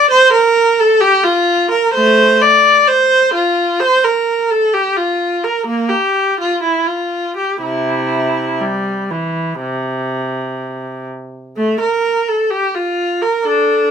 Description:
classical, baroque-style suite movement for unaccompanied viola; 60-66 BPM; 4/4; rubato; F major; A4 = 438 Hz
rich viola; solo; 0.0-13.9 s; C3 to D5; -12 LUFS; equal
little or no reverb; close, detailed microphones; -12 LUFS; side -7 dB against mid
0.0-11.6 A section; 11.6-13.9 B section

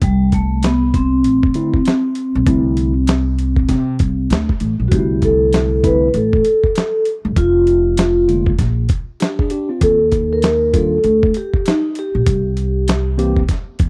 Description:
hip hop, jazz-hop; 98 BPM; 4/4; swing 61% on 16ths; C major; A4 = 438 Hz
vibraphone with soft mallets; melody; 0.0-13.2 s; G3 to B4; -18 LUFS; equal
upright bass; bass; 0.0-13.9 s; F1 to C3; -20 LUFS; equal
dusty soul sampler-style drum kit; drums; 0.0-13.9 s; hi-hat, kick drum, snare drum; -20 LUFS; equal; overdrive
mellow tine electric piano; accompaniment; 1.5-13.4 s; D3 to Ab4; -22 LUFS; equal
digital ambience; dry, close 1970s-style studio recording; -16 LUFS; mono
0.0-4.9 A section; 4.9-13.9 A section
0.0 C69; 7.4 Fm; 8.6 Bb6; 9.8 Ebmaj9; 12.3 C7

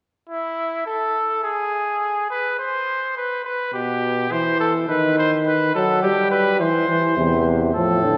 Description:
classical, imitative canzona for brass ensemble; 104 BPM; 3/4; straight; A4 = 440 Hz
clear trumpet; second line; 0.3-8.2 s; E4 to C5; -24 LUFS; equal
clear euphonium; accompaniment; 3.7-8.2 s; B2 to G3; -22 LUFS; equal
warm bass trombone; bass; 7.2-8.2 s; E2 to A2; -22 LUFS; equal
wet church reverb, RT60 3.2 s; heard from further back in the room; -21 LUFS; mono
0.0-8.2 A section
0.0 N.C.; 3.2 G/B; 4.3 Am/E; 4.9 B/D#; 6.0 G; 6.6 C/E

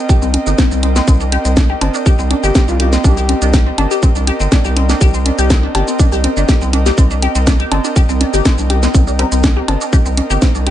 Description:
minimal techno; 122 BPM; 4/4; straight; C minor; A4 = 435 Hz
airy breathy pad; texture; 0.0-10.7 s; C4 to G5; -22 LUFS; right 3 dB; chorus, sidechain pumping
resonant blip pluck; riff; 0.1-10.7 s; C4 to G4; -20 LUFS; left 3 dB; phaser, lush chorus, sidechain pumping, tape echo
electronic kick drum; drums; 0.1-10.5 s; -12 LUFS; equal; small room reverb
garage drum kit; drums; 0.1-10.7 s; hi-hat, shaker, snare drum; -19 LUFS; equal; small room reverb
bongos and cowbell; percussion; 0.1-10.7 s; -23 LUFS; equal; small room reverb, tape echo
round analog bass; bass; 0.2-10.7 s; G1 to C2; -15 LUFS; equal; sidechain pumping
breathy flute-like synth lead; melody; 2.4-3.5 s; F4 to G4; -23 LUFS; equal; chorus, tape echo
filtered dub chord stab; stabs; 9.2-9.3 s; G3 to Bb4; -26 LUFS; left 5 dB; phaser, lush chorus, tape echo
little or no reverb; nothing above 10.4 kHz; -11 LUFS; side -12 dB against mid
0.0-10.7 A section
0.0 Cm7

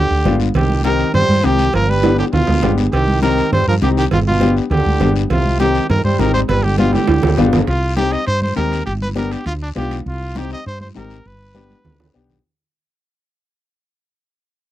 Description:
latin, cumbia; 202 BPM; 4/4; straight; C harmonic minor; A4 = 440 Hz
bright trumpet; melody; 0.0-12.2 s; D4 to Eb5; -20 LUFS; equal
clear trombone; second line; 0.0-7.5 s; B2 to G3; -23 LUFS; right 7 dB
woody fretless electric bass; bass; 0.0-12.4 s; G1 to G2; -18 LUFS; equal
clear upright piano; accompaniment; 0.2-12.4 s; B3 to G4; -19 LUFS; left 6 dB
congas; percussion; 0.3-12.4 s; -22 LUFS; right 2 dB
cowbell and timbales; percussion; 0.3-10.1 s; -25 LUFS; right 7 dB
guiro; percussion; 0.3-12.4 s; -36 LUFS; left 9 dB
light reverb; dry, close 1970s-style studio recording; -13 LUFS; side -13 dB against mid
0.0-7.7 A section; 7.7-12.4 B section
drum fill 2.0-2.9, 6.8-7.7, 11.5-12.4; fade-out 7.7-12.4
0.0 G7; 0.5 Cm; 1.7 G7; 2.9 Cm; 4.1 G7; 5.3 Cm; 6.5 G7; 7.7 Cm; 8.9 G7; 10.1 Cm; 11.2 G

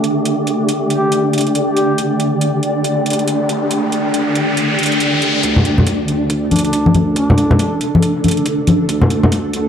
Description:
deep dubstep; 139 BPM; 4/4; swing 61% on 16ths, half-time; D minor; A4 = 439 Hz
granular cloud pad; sustained chords; 0.0-9.7 s; D4 to D5; -18 LUFS; equal; built-in reverb, vintage 12-bit sampler grit
electronic hi-hat; drums; 0.0-9.6 s; -24 LUFS; right 2 dB; studio reverb
wind-like tuned noise texture; texture; 0.0-5.5 s; A3 to G4; -20 LUFS; equal; built-in reverb
mellow duduk; melody; 0.9-2.0, 6.5-7.8 s; D4 to G4; -21 LUFS; equal; dub echo
riser; sound effects; 3.0-5.4 s; -20 LUFS; equal
saturated sub bass; bass; 5.4-9.7 s; F1 to D2; -23 LUFS; equal; high-pass filter
electronic kick drum; drums; 5.4-9.4 s; -29 LUFS; equal; high-pass filter on kick, studio reverb
congas; percussion; 5.6-9.3 s; -14 LUFS; left 1 dB
moderate spring reverb, RT60 1.4 s; dark, warm production; -13 LUFS; side -8 dB against mid
0.0-5.4 A section; 5.4-9.7 B section
filter sweep on ambient pad 0.0-5.4; riser 3.0-5.4; build-up 5.4-9.7
0.0 D5; 5.4 Dm

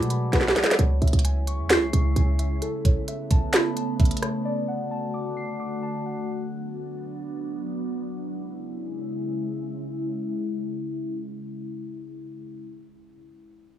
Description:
hip hop, trap; 131 BPM; 4/4; half-time; C# phrygian; A4 = 439 Hz
concert harp; melody; 0.0-3.4 s; F#3 to B4; -33 LUFS; left 2 dB; digital delay
muted felt-like synth keys; accompaniment; 0.0-6.3 s; A4 to B#6; -32 LUFS; left 3 dB; chorus, low-pass filter
short 808-style bass; bass; 0.0-2.6 s; B1 to B2; -22 LUFS; right 1 dB
trap drum kit; drums; 0.0-4.3 s; finger snaps, hi-hat, kick drum, rim click, snare drum; -21 LUFS; right 1 dB
glassy FM pad; sustained chords; 1.2-12.1 s; C#3 to F#4; -30 LUFS; equal; ensemble chorus, built-in reverb, low-pass filter
light reverb; rough home demo mix, small room ambience; -23 LUFS; side -11 dB against mid
0.8-8.1 A section; 8.1-11.8 B section
drum fill 0.3-0.8; filter sweep 0.8-8.1
0.0 Bm; 0.8 C#m; 2.6 Aadd9; 4.5 D; 6.3 Bm; 8.1 C#m

